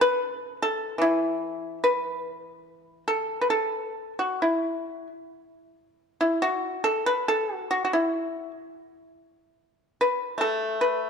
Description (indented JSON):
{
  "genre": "chinese traditional, Chinese solo plucked strings",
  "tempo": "63-74 BPM",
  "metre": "4/4",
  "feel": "rubato",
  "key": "E zhi mode",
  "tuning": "A4 = 441 Hz",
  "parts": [
    { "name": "pipa", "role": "solo", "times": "0.0-11.1 s", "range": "C#3 to B4", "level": "-24 LUFS", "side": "equal", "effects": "none" }
  ],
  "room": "moderate concert hall reverb, RT60 1.9 s",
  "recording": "dark, warm production",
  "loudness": "-24 LUFS",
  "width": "side -6 dB against mid",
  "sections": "0.0-5.3 A section; 5.3-11.1 B section",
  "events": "none",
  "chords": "none"
}